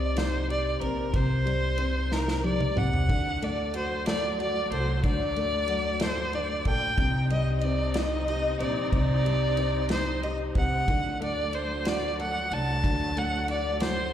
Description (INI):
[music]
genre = six-eight pop ballad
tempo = 62 BPM (dotted quarters)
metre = 6/8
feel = straight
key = unclear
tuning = A4 = 440 Hz
[part]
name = warm violin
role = melody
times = 0.0-14.1 s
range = Bb4 to A5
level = -29 LUFS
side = right 1 dB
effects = slapback echo, tape echo
[part]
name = dark upright piano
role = accompaniment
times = 0.0-14.1 s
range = C3 to A4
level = -32 LUFS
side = left 3 dB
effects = slapback echo
[part]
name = upright bass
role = bass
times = 0.0-14.1 s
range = Bb1 to D2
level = -30 LUFS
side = equal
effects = none
[part]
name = unplugged drum kit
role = drums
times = 0.2-14.0 s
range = kick drum, ride cymbal, snare drum, toms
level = -31 LUFS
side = equal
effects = none
[part]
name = warm studio string section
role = sustained chords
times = 3.1-14.1 s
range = F#3 to Eb4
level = -38 LUFS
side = equal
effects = none
[sound]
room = light reverb, small room reverb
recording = live gig heard through the venue's PA, recital hall reverb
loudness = -24 LUFS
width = side -10 dB against mid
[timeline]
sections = 0.0-14.1 A section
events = drum fill 2.1-3.1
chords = 0.0 Cm; 3.1 D; 7.0 Cmadd9; 10.9 D